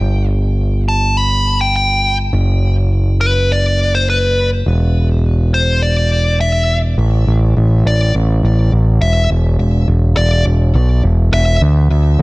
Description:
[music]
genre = post-rock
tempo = 103 BPM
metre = 4/4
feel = straight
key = A dorian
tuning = A4 = 440 Hz
[part]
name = growling picked electric bass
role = bass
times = 0.0-12.2 s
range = E1 to D2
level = -12 LUFS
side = equal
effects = overdrive
[part]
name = nasal lead guitar with a parked wah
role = melody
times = 0.9-11.6 s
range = B4 to B5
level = -18 LUFS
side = left 1 dB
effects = overdrive, digital delay
[sound]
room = little or no reverb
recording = none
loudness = -11 LUFS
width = side -23 dB against mid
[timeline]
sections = 0.0-7.0 A section; 7.0-12.2 B section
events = build-up 7.0-12.2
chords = 0.0 N.C.; 2.3 F#sus4; 4.7 Cadd9/E (rootless); 7.0 A5; 9.3 E5; 11.6 D5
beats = | 0.01 0.59 1.18 1.76 | 2.34 2.92 3.50 4.08 | 4.67 5.25 5.83 6.41 | 6.99 7.57 8.15 8.73 | 9.31 9.88 10.46 11.04 | 11.62 12.20

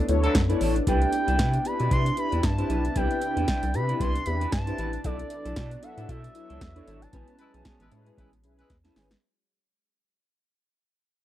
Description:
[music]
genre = early-eighties boogie funk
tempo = 115 BPM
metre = 4/4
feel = swing 56% on 16ths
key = unclear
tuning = A4 = 440 Hz
[part]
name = lush unison pad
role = sustained chords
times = 0.0-9.2 s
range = C3 to E4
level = -38 LUFS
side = left 1 dB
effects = chorus
[part]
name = electric guitar through a small old amp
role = riff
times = 0.0-9.2 s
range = B3 to C5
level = -35 LUFS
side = right 2 dB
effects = lush chorus
[part]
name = mellow synth brass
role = accompaniment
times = 0.1-9.1 s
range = G#3 to E5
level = -31 LUFS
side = left 2 dB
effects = chorus
[part]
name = rubbery square bass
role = bass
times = 0.1-9.2 s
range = G#1 to C3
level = -27 LUFS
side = equal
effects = none
[part]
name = electro analog drum machine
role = drums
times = 0.1-9.2 s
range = hi-hat, kick drum, snare drum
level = -28 LUFS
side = equal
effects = overdrive
[part]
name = clear horn section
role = second line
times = 0.2-0.4, 7.4-8.8 s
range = F#3 to B4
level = -31 LUFS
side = left 2 dB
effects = none
[part]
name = expressive portamento lead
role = melody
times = 0.9-8.7 s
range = D5 to C6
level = -31 LUFS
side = equal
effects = chorus, slapback echo
[sound]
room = little or no reverb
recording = dry, close 1970s-style studio recording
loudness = -23 LUFS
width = side -13 dB against mid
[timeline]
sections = 0.0-9.2 A section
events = fade-out 0.0-9.2; band accent 0.0-0.9, 7.1-9.2; drum fill 8.7-9.2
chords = 0.0 Bm11; 0.9 Cmaj9; 5.0 Bm11; 7.1 Amaj9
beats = 0.35 | 0.87 1.39 1.92 2.44 | 2.96 3.48 4.00 4.53 | 5.05 5.57 6.09 6.61 | 7.13 7.66 8.18 8.70

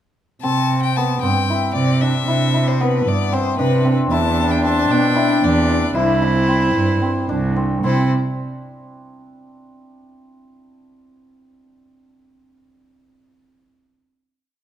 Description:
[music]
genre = contemporary instrumental, chamber music in an uneven meter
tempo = 228 BPM (eighths)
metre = 7/8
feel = straight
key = C major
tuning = A4 = 440 Hz
[part]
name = clear violin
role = melody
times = 0.4-8.1 s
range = B4 to A5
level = -24 LUFS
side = left 8 dB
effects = none
[part]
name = hammered dulcimer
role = arpeggios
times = 0.4-8.1 s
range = B3 to E4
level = -22 LUFS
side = equal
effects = none
[part]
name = warm cello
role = bass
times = 0.4-8.1 s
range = C2 to C3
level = -19 LUFS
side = right 2 dB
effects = none
[part]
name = rich viola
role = second line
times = 4.1-8.1 s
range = D4 to E4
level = -20 LUFS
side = equal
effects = none
[sound]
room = moderate recital hall reverb, RT60 1.8 s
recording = dark, warm production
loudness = -15 LUFS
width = side -10 dB against mid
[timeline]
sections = 0.4-7.8 A section; 7.8-9.7 final chord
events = none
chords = 0.4 Cmaj7; 4.1 Em7; 6.0 C; 7.8 N.C.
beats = | 0.43 0.70 0.96 1.23 1.49 1.75 2.01 | 2.28 2.54 2.80 3.06 3.32 3.59 3.85 | 4.11 4.38 4.64 4.90 5.17 5.43 5.69 | 5.96 6.22 6.49 6.76 7.03 7.30 7.57 | 7.84

